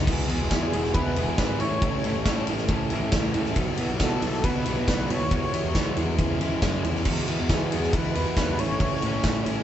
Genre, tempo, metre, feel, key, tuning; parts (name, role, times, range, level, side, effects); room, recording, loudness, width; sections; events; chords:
indie rock; 138 BPM; 4/4; straight; E major; A4 = 440 Hz
electric guitar through a small old amp; riff; 0.0-9.6 s; A2 to A4; -32 LUFS; right 5 dB
fuzz guitar; riff; 0.0-9.6 s; A2 to E4; -32 LUFS; left 6 dB; distortion
fuzz picked electric bass; bass; 0.0-9.6 s; E1 to E3; -28 LUFS; equal; overdrive
big rock drum kit; drums; 0.1-9.6 s; crash cymbal, kick drum, ride cymbal, snare drum; -26 LUFS; equal
octave-doubled lead; melody; 0.5-9.5 s; G#4 to C#5; -31 LUFS; equal; chorus
light reverb; band playing live in one room, nothing above 8.0 kHz; -22 LUFS; side -10 dB against mid
0.1-9.6 A section
0.1 Eadd9; 1.6 A; 3.6 Bsus4; 5.3 Eadd9; 6.2 C#m/E; 7.1 Eadd9; 8.6 A